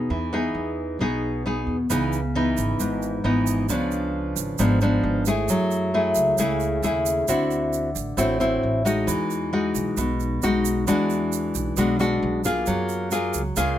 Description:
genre	bossa nova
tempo	134 BPM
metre	4/4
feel	straight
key	C# minor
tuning	A4 = 440 Hz
part	nylon-string guitar	accompaniment	0.0-13.8 s	G#2 to G#4	-22 LUFS	left 1 dB	none
part	upright bass	bass	0.0-13.8 s	G#1 to F#2	-29 LUFS	right 2 dB	none
part	egg shaker	percussion	1.9-13.8 s	none	-32 LUFS	right 14 dB	none
room	light reverb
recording	none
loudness	-21 LUFS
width	side -11 dB against mid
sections	0.0-1.9 A section; 1.9-13.8 B section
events	none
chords	0.0 Emaj7; 1.9 C#m9; 3.7 C#7b9; 5.5 F#m9; 7.3 D9; 9.1 Emaj9; 10.9 E9; 12.7 F#maj9

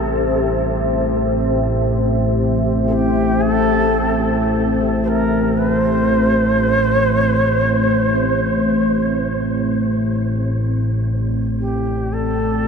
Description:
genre	dark ambient drone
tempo	free time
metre	none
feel	none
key	unclear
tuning	A4 = 440 Hz
part	breathy shakuhachi	melody	0.0-12.7 s	G4 to C5	-21 LUFS	right 1 dB	diffuse ambient delay
part	deep dark ambient pad	sustained chords	0.0-12.7 s	C4 to E5	-22 LUFS	equal	chorus, built-in reverb
part	analog drone	drone	0.0-12.7 s	A1 to A2	-18 LUFS	left 1 dB	chorus
room	wet huge ambient reverb, RT60 8.0 s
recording	dark, warm production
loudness	-15 LUFS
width	side -6 dB against mid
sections	0.0-12.7 A section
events	fade-out on ambient pad 0.0-12.7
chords	0.0 Am; 9.9 Bbmaj13/A (rootless)

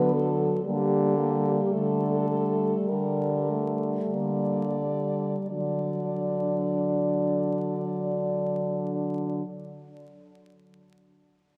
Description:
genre	classical, lyrical piece for horn quartet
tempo	41-59 BPM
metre	4/4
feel	rubato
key	D major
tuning	A4 = 440 Hz
part	warm French horn	melody	0.0-9.4 s	G4 to D5	-33 LUFS	equal	none
part	mellow French horn	second line	0.0-9.4 s	G3 to D4	-35 LUFS	equal	none
part	dark French horn	accompaniment	0.0-9.4 s	F#3 to G3	-33 LUFS	equal	none
part	warm French horn	bass	0.0-9.4 s	D3	-32 LUFS	equal	none
room	wet church reverb, RT60 3.7 s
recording	vinyl crackle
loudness	-27 LUFS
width	mono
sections	0.0-5.5 A section; 5.5-10.5 B section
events	slowing down 0.0-5.5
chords	0.0 D; 0.6 G5/D; 5.5 D

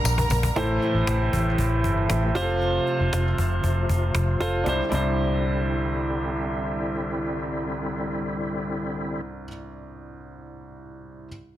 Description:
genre	piano-driven pop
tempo	117 BPM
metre	4/4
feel	straight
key	C mixolydian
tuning	A4 = 444 Hz
part	dark studio violin section	second line	0.0-0.5 s	Bb4 to Bb5	-30 LUFS	right 2 dB	digital delay, plate reverb
part	clear baby grand piano	accompaniment	0.0-11.3 s	C2 to C5	-26 LUFS	right 1 dB	plate reverb
part	vintage muted fingered electric bass	bass	0.0-9.5 s	F1 to C2	-25 LUFS	left 1 dB	none
part	cajon	drums	0.1-5.1 s	none	-30 LUFS	left 1 dB	none
part	bright tonewheel organ	sustained chords	0.6-9.2 s	C3 to F4	-31 LUFS	left 1 dB	chorus vibrato, fast rotary speaker, plate reverb
room	light reverb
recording	dense, heavily limited modern master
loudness	-22 LUFS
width	side -13 dB against mid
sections	0.6-4.7 A section; 4.7-8.8 B section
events	drum fill 0.0-0.6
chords	0.0 Gm/Bb; 0.6 Am; 2.4 F; 4.7 Cadd9

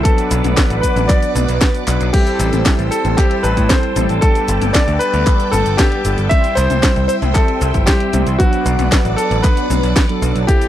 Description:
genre	italo disco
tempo	115 BPM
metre	4/4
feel	straight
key	unclear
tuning	A4 = 441 Hz
part	bright grand piano	melody	0.0-10.7 s	F#4 to E5	-19 LUFS	left 1 dB	tape echo
part	phased string machine	sustained chords	0.0-10.7 s	A4 to E6	-24 LUFS	equal	ensemble chorus, phaser
part	mellow synth brass	stabs	0.1-10.7 s	F#3 to C5	-21 LUFS	right 1 dB	chorus
part	electronic kick drum	drums	0.1-10.6 s	none	-15 LUFS	equal	none
part	house drum kit	drums	0.1-10.7 s	cabasa, crash cymbal, handclaps, hi-hat, snare drum, toms	-20 LUFS	left 2 dB	none
part	modern bright picked electric bass	bass	0.3-10.4 s	G1 to A2	-18 LUFS	equal	none
room	little or no reverb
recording	dry, close 1970s-style studio recording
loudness	-12 LUFS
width	side -12 dB against mid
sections	0.0-10.7 A section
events	drum fill 1.9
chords	0.1 Bm; 2.1 Am7; 4.2 Gadd9; 6.3 C; 8.4 Bm

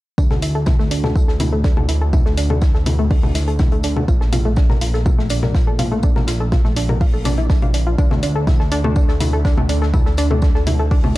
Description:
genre	melodic techno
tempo	123 BPM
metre	4/4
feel	straight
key	D minor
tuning	A4 = 438 Hz
part	analog pluck	arpeggios	0.2-11.1 s	A3 to F5	-23 LUFS	equal	chorus, sidechain pumping, digital delay
part	fat analog bass	bass	0.2-11.2 s	Bb1 to D2	-20 LUFS	equal	sidechain pumping
part	electronic kick drum	drums	0.2-11.0 s	none	-16 LUFS	equal	none
part	loose indie drum kit	drums	0.2-11.0 s	hi-hat, snare drum, tambourine	-38 LUFS	left 2 dB	high-pass filter on hats, high-pass filter on snare, high-pass filter on perc, high-pass filter on room
part	electronic congas and hi-hat	drums	0.3-11.1 s	none	-24 LUFS	left 2 dB	sidechain pumping on perc, sidechain pumping on hats
room	light reverb, studio reverb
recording	dark, warm production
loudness	-14 LUFS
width	side -18 dB against mid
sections	0.2-11.2 A section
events	filter sweep on synth arpeggio sound 0.2-11.2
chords	0.2 Dsus2; 4.1 Bb; 8.0 Dsus2

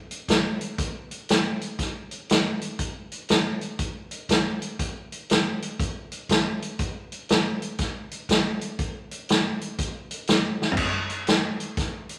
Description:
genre	blues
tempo	120 BPM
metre	4/4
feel	swing 64% on 8ths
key	none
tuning	none
part	swinging big-band drum kit	drums	0.1-12.2 s	crash cymbal, hi-hat, kick drum, snare drum, toms	-26 LUFS	equal	none
room	moderate large studio reverb, RT60 0.9 s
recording	none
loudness	-26 LUFS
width	mono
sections	0.0-10.8 A section; 10.8-12.2 B section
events	drum fill 10.5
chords	none

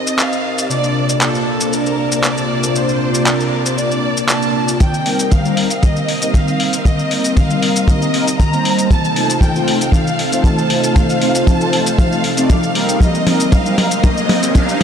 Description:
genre	nu-disco, nu disco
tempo	117 BPM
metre	4/4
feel	straight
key	C dorian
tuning	A4 = 440 Hz
part	rich studio violin section	melody	0.0-14.8 s	A4 to Bb5	-21 LUFS	equal	low-pass filter, ping-pong delay
part	mellow synth brass	accompaniment	0.0-14.8 s	C3 to Eb5	-18 LUFS	equal	chorus, phaser, cassette tape, sidechain pumping, tape echo
part	string machine, full ensemble	sustained chords	0.0-14.8 s	C3 to A5	-21 LUFS	equal	ensemble chorus, sidechain pumping
part	dusty soul sampler-style drum kit	drums	0.1-14.8 s	handclaps, hi-hat, shaker, toms	-19 LUFS	left 1 dB	none
part	kick drum	drums	4.8-14.7 s	none	-13 LUFS	equal	none
part	riser	sound effects	13.9-14.8 s	none	-23 LUFS	left 2 dB	none
room	wet huge ambient reverb, RT60 3.9 s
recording	dreamy mix soaked in reverb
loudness	-13 LUFS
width	side -8 dB against mid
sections	0.0-4.8 A section; 4.8-14.8 B section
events	filter sweep on analog polysynth 0.0-4.8; build-up 4.8-14.8; drum fill 4.8-14.8; riser 13.9-14.8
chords	0.0 Cm7; 0.7 Bbmaj7/C; 4.8 Cm7; 8.9 F7/C; 13.0 Cm7

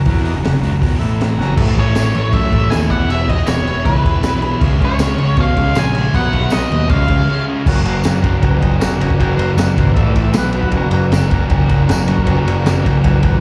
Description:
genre	garage rock duo or trio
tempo	157 BPM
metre	4/4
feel	straight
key	unclear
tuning	A4 = 440 Hz
part	combo organ	sustained chords	0.0-13.4 s	E4 to A#5	-28 LUFS	equal	spring reverb
part	thick fuzz guitar	riff	0.0-13.4 s	E2 to E4	-22 LUFS	equal	distortion, slapback echo
part	growling picked electric bass	bass	0.0-13.4 s	E1 to B2	-19 LUFS	equal	overdrive, tube saturation
part	crunchy breakbeat drum kit	drums	0.1-13.3 s	crash cymbal, hi-hat, kick drum, ride cymbal, snare drum	-20 LUFS	equal	none
part	octave-fuzz lead guitar	melody	1.8-7.4 s	B4 to G#5	-23 LUFS	equal	distortion, plate reverb, slapback echo
part	tambourine	percussion	2.0-12.8 s	none	-35 LUFS	equal	none
room	light reverb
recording	live gig heard through the venue's PA, club reverb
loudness	-15 LUFS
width	mono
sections	0.0-1.6 A section; 1.6-7.7 B section; 7.7-13.4 C section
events	transistor combo organ fill 0.8-1.6; drum fill 1.4; break 7.3-7.7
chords	0.0 F#; 1.0 A5; 1.4 F#; 1.6 A; 2.9 E; 4.6 C#; 6.1 B; 6.9 C#; 7.7 Gb; 10.0 A5; 10.3 Cb5; 10.7 Gb

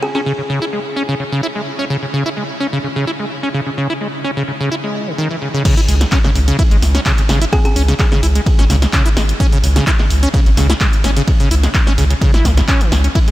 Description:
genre	acid house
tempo	128 BPM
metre	4/4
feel	straight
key	C# minor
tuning	A4 = 440 Hz
part	buzzing kalimba	melody	0.0-0.2, 7.5-7.7 s	G#4	-25 LUFS	equal	diffuse ambient delay
part	acid bass, saw	riff	0.1-13.3 s	C#2 to E4	-18 LUFS	equal	analog chorus, diffuse ambient delay
part	electronic kick drum	drums	5.7-13.2 s	none	-14 LUFS	equal	studio reverb
part	punchy analog drum machine	drums	5.7-13.3 s	crash cymbal, handclaps, hi-hat, ride cymbal, snare drum	-20 LUFS	equal	studio reverb
part	round analog bass	bass	5.9-13.1 s	G#1 to C#2	-14 LUFS	equal	sidechain pumping
room	light reverb, digital ambience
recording	none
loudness	-12 LUFS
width	side -16 dB against mid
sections	0.0-5.7 A section; 5.7-13.3 B section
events	drop 5.7-13.3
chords	0.0 C#5

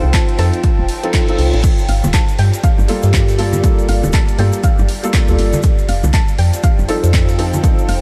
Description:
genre	deep house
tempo	120 BPM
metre	4/4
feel	swing 60% on 16ths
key	G minor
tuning	A4 = 441 Hz
part	soft round pluck	melody	0.0-8.0 s	F5 to A5	-31 LUFS	equal	lush chorus, analog delay
part	felt-muted upright piano	stabs	0.0-8.0 s	F3 to A4	-24 LUFS	equal	subtle chorus, sidechain pumping, delay
part	woody FM bass	bass	0.0-8.0 s	D1 to G2	-17 LUFS	equal	sidechain pumping
part	warbly tape-like pad	texture	0.0-8.0 s	F4 to A5	-28 LUFS	equal	chorus, built-in reverb, sidechain pumping
part	breakbeat sampler-style drum kit	drums	0.1-8.0 s	hi-hat, snare drum	-36 LUFS	equal	none
part	deep house drum kit	drums	0.1-8.0 s	crash cymbal, handclaps, hi-hat	-28 LUFS	equal	none
part	electronic kick drum	drums	0.1-7.8 s	none	-17 LUFS	equal	none
part	reverse cymbal	sound effects	0.9-1.6 s	none	-35 LUFS	equal	none
part	egg shaker	percussion	1.6-7.9 s	none	-35 LUFS	equal	none
part	congas	percussion	2.0-7.6 s	none	-25 LUFS	equal	sidechain pumping on perc
room	light reverb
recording	vinyl crackle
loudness	-14 LUFS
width	mono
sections	0.0-8.0 A section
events	reverse cymbal 0.9-1.6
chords	0.0 F7; 1.6 Gm9; 5.6 F7

